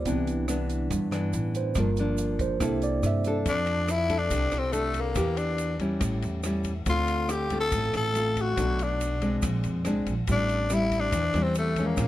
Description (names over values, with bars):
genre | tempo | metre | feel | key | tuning
bossa nova | 141 BPM | 4/4 | straight | C major | A4 = 440 Hz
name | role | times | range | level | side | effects
mellow tine electric piano | accompaniment | 0.0-8.6 s | Bb3 to A5 | -32 LUFS | right 4 dB | none
nylon-string guitar | accompaniment | 0.0-12.1 s | G2 to A4 | -30 LUFS | left 1 dB | none
upright bass | bass | 0.0-12.1 s | G1 to G2 | -30 LUFS | equal | none
compact cocktail drum kit | drums | 0.1-12.1 s | hi-hat, kick drum, ride cymbal, rim click | -35 LUFS | equal | none
tube shaker | percussion | 0.1-12.1 s | none | -43 LUFS | right 7 dB | none
growling tenor saxophone | melody | 3.5-12.1 s | A3 to A4 | -27 LUFS | left 2 dB | none
room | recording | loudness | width
little or no reverb | none | -24 LUFS | side -14 dB against mid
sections
0.0-3.5 A section; 3.5-12.1 B section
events
tine electric piano solo 0.0-3.5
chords
0.1 Cmaj9; 1.8 Gm7; 2.6 C13; 3.5 F6; 5.2 Em7b5; 6.0 A7; 6.9 Dm7; 8.6 Bm7; 9.4 Bb9; 10.3 Am7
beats
| 0.07 0.49 0.92 1.34 | 1.77 2.19 2.62 3.04 | 3.47 3.89 4.32 4.74 | 5.17 5.59 6.02 6.44 | 6.87 7.29 7.72 8.14 | 8.57 9.00 9.42 9.85 | 10.27 10.70 11.12 11.55 | 11.97